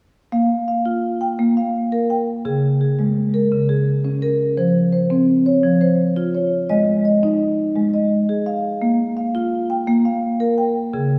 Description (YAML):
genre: southern african traditional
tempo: 113 BPM (dotted quarters)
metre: 12/8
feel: straight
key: Bb dorian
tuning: A4 = 441 Hz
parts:
  - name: marimba with soft mallets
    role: arpeggios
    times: 0.3-11.2 s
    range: Db3 to G5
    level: -19 LUFS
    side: equal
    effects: none
room: wet concert hall reverb, RT60 1.9 s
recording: recorded in a church or concert hall, small room ambience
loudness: -19 LUFS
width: mono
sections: 0.3-11.2 A section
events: none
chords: 0.3 Bb5; 2.5 Db5; 4.6 F5; 6.7 Ab5; 8.8 Bb5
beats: | 0.33 0.86 1.39 1.92 | 2.45 2.98 3.52 4.05 | 4.58 5.11 5.64 6.17 | 6.70 7.23 7.76 8.29 | 8.82 9.35 9.88 10.41 | 10.94